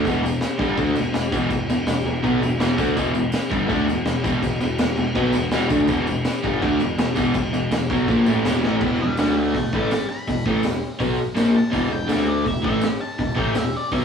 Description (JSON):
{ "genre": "garage rock duo or trio", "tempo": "164 BPM", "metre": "4/4", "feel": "straight", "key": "E minor", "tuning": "A4 = 440 Hz", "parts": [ { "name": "raw garage guitar", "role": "riff", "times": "0.0-14.0 s", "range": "E2 to D4", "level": "-21 LUFS", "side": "equal", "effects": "overdrive" }, { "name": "modern bright picked electric bass", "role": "bass", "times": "0.0-14.0 s", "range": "E1 to D2", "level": "-26 LUFS", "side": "equal", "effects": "tube saturation" }, { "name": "crunchy breakbeat drum kit", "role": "drums", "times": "0.0-14.0 s", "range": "crash cymbal, hi-hat, kick drum, snare drum", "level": "-25 LUFS", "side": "equal", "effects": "none" }, { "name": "tambourine", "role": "percussion", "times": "0.1-13.6 s", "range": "none", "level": "-42 LUFS", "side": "right 6 dB", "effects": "none" }, { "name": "octave-fuzz lead guitar", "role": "melody", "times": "9.0-14.0 s", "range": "D5 to B5", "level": "-29 LUFS", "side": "left 1 dB", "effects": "distortion" } ], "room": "light reverb", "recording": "rough rehearsal-room recording, small room reverb", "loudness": "-19 LUFS", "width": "side -7 dB against mid", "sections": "0.0-8.8 A section; 8.8-14.0 B section", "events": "drum fill 8.6", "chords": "0.0 Em; 9.2 D5; 9.5 E5; 12.1 D5; 12.5 E5" }